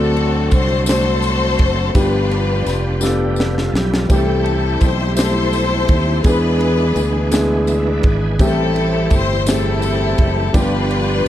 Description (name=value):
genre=slow gospel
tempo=56 BPM (dotted quarters)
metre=6/8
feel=straight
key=C major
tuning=A4 = 440 Hz
part: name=rich symphonic string section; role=melody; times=0.0-11.3 s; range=C4 to C5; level=-20 LUFS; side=left 4 dB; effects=slapback echo
part: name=warm grand piano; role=accompaniment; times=0.0-11.3 s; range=G2 to C5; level=-20 LUFS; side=left 1 dB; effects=none
part: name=bright tonewheel organ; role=sustained chords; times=0.0-11.3 s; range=E3 to G#5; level=-25 LUFS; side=right 3 dB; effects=fast rotary speaker, overdrive, chorus vibrato
part: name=fingered electric bass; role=bass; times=0.0-11.3 s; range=F1 to E2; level=-19 LUFS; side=equal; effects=none
part: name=tight funk drum kit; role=drums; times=0.2-11.1 s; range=kick drum, ride cymbal, snare drum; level=-17 LUFS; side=equal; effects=none
part: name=tambourine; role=percussion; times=0.5-10.9 s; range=none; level=-31 LUFS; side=left 6 dB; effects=none
room=light reverb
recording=dark, warm production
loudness=-14 LUFS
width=side -12 dB against mid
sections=0.0-11.3 A section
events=drum fill 3.0-4.1; tonewheel organ fill 7.3-8.4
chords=0.0 D7; 1.9 G7; 4.1 C6; 6.2 E7; 8.4 Am7; 10.5 G7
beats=0.88 | 1.95 3.02 | 4.10 5.17 | 6.24 7.32 | 8.39 9.47 | 10.54